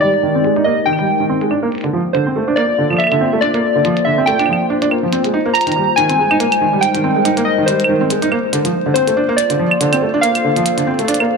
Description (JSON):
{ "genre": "IDM", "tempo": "141 BPM", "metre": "4/4", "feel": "swing 56% on 16ths", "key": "unclear", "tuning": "A4 = 440 Hz", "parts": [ { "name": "warbly lo-fi synth keys", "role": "melody", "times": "0.0-11.4 s", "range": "C5 to Bb5", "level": "-16 LUFS", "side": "equal", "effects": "chorus, vintage 12-bit sampler grit, digital delay" }, { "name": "warbly tape-like pad", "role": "sustained chords", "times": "0.0-11.4 s", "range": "G3 to D5", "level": "-19 LUFS", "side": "left 2 dB", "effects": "chorus, built-in reverb" }, { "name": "felt-muted upright piano", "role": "arpeggios", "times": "0.0-11.2 s", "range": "D3 to Eb4", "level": "-18 LUFS", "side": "right 2 dB", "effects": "low-pass filter, digital delay" }, { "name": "electronic hi-hat and claves", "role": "drums", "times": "0.0-11.3 s", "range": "none", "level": "-21 LUFS", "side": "right 2 dB", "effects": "low-pass filter on perc, low-pass filter on snare, low-pass filter on hats, low-pass filter on toms" } ], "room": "moderate plate reverb, RT60 2.6 s", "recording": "none", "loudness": "-13 LUFS", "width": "side -4 dB against mid", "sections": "0.0-11.4 A section", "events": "filter sweep on ambient pad 0.0-11.4; filter sweep on felt piano 0.0-11.4", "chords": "0.0 Abmaj9; 1.5 Bbmaj9; 5.1 Abmaj9; 8.3 Bbmaj9" }